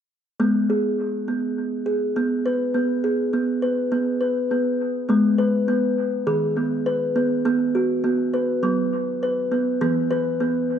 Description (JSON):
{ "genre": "world meditative", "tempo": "102 BPM", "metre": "4/4", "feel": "straight", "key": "G# minor", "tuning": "A4 = 443 Hz", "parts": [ { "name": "kalimba", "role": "arpeggios", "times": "0.4-10.8 s", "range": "D#3 to B4", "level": "-20 LUFS", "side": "equal", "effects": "dub echo" } ], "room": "wet echo chamber reverb, RT60 1.4 s, studio reverb", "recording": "echo-heavy mix, cassette tape", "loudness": "-20 LUFS", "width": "side -8 dB against mid", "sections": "0.4-5.1 A section; 5.1-10.8 B section", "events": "none", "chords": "0.4 G#m; 2.7 G#m/B; 5.1 G#m; 7.5 B5; 9.8 E5" }